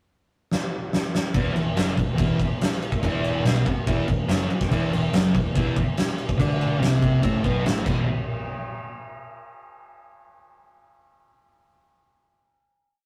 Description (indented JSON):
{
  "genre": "garage rock duo or trio",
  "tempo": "143 BPM",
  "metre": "4/4",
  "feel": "straight",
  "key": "unclear",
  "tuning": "A4 = 436 Hz",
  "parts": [
    { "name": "oversized low-tuned drum kit", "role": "drums", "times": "0.5-8.0 s", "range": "crash cymbal, kick drum, snare drum", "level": "-27 LUFS", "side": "equal", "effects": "none" },
    { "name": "thick fuzz guitar", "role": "riff", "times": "1.3-8.0 s", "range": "E2 to D4", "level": "-26 LUFS", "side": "equal", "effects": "distortion" },
    { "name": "picked electric bass", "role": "bass", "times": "1.3-8.1 s", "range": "E1 to D2", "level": "-32 LUFS", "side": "equal", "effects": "none" }
  ],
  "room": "wet booth ambience, RT60 0.2 s",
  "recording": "rough rehearsal-room recording, tube saturation",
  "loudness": "-23 LUFS",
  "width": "mono",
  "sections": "0.0-1.3 pickup bar; 1.3-8.1 riff; 8.1-9.7 final hit",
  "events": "drum fill 0.5-1.3, 7.9",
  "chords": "0.0 N.C.; 1.3 E5; 8.1 N.C.",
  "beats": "0.09 0.51 0.93 | 1.34 1.76 2.19 2.60 | 3.03 3.45 3.87 4.29 | 4.71 5.13 5.55 5.97 | 6.39 6.81 7.23 7.65"
}